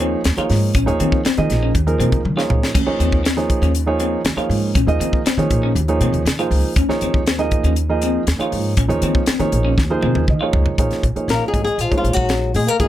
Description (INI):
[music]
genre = electric jazz fusion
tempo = 120 BPM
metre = 4/4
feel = straight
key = unclear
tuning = A4 = 436 Hz
[part]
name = dark grand piano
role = accompaniment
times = 0.0-12.9 s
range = F3 to Ab5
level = -21 LUFS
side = right 3 dB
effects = none
[part]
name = clean electric guitar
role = stabs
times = 0.0-10.6 s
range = C4 to F4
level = -24 LUFS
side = left 4 dB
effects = lush chorus
[part]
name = upright bass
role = bass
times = 0.0-12.9 s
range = Ab1 to Eb3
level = -20 LUFS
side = equal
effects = none
[part]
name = tight funk drum kit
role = drums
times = 0.2-12.9 s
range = crash cymbal, hi-hat, kick drum, snare drum, toms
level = -20 LUFS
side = equal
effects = none
[part]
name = flamenco guitar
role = melody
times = 11.3-12.9 s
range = F4 to Bb4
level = -20 LUFS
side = left 2 dB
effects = slapback echo
[part]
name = trombone with cup mute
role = second line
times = 11.3-12.9 s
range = F3 to Bb3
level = -24 LUFS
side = left 5 dB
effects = slapback echo
[sound]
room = light reverb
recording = none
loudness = -15 LUFS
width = side -12 dB against mid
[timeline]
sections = 0.0-10.8 A section; 10.8-12.9 B section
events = drum fill 2.3-2.8, 9.8-10.8; grand piano fill 9.8-10.8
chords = 0.0 Eb13sus4; 10.8 Bbm7